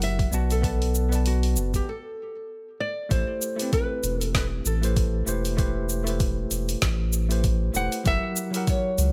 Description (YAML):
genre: sunset chillout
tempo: 97 BPM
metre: 4/4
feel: swing 57% on 16ths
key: A dorian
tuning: A4 = 442 Hz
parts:
  - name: nylon-string guitar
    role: melody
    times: 0.0-9.1 s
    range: F#4 to F#5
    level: -33 LUFS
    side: equal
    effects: digital delay
  - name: tine electric piano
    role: accompaniment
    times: 0.0-9.1 s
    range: F#3 to A5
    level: -33 LUFS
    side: equal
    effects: digital delay
  - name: round analog bass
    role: bass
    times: 0.0-9.1 s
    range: E1 to C#2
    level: -27 LUFS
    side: equal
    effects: none
  - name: deep house drum kit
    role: drums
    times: 0.0-9.1 s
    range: hi-hat, shaker, snare drum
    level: -33 LUFS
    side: equal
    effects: studio reverb
  - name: electronic kick drum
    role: drums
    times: 0.2-8.8 s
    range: none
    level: -28 LUFS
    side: equal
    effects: overdrive, studio reverb
room: digital ambience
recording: none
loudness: -25 LUFS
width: mono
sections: 0.0-3.1 A section; 3.1-9.1 B section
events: break 1.9-3.1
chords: 0.3 Bm7; 1.9 N.C.; 3.1 Am9; 8.1 F#7b9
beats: 0.02 | 0.63 1.25 1.87 2.49 | 3.11 3.73 4.35 4.96 | 5.58 6.20 6.82 7.44 | 8.06 8.68